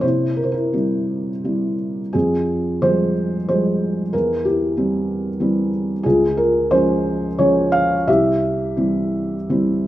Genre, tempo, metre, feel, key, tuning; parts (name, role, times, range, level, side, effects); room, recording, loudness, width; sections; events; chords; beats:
classical, lyrical solo piano; 79-96 BPM; 3/4; rubato; A4 = 441 Hz
felt-muted upright piano; solo; 0.0-9.9 s; C2 to F5; -17 LUFS; equal
moderate recital hall reverb, RT60 1.6 s; minimal, uncompressed stereo recording; -17 LUFS; side -14 dB against mid
0.0-9.9 A section
0.0 C; 2.1 Fmadd9; 4.1 C/E; 6.0 Db; 8.1 C
| 0.03 0.73 1.44 | 2.14 2.83 3.49 | 4.13 4.76 5.40 | 6.05 6.71 7.39 | 8.08 8.77 9.49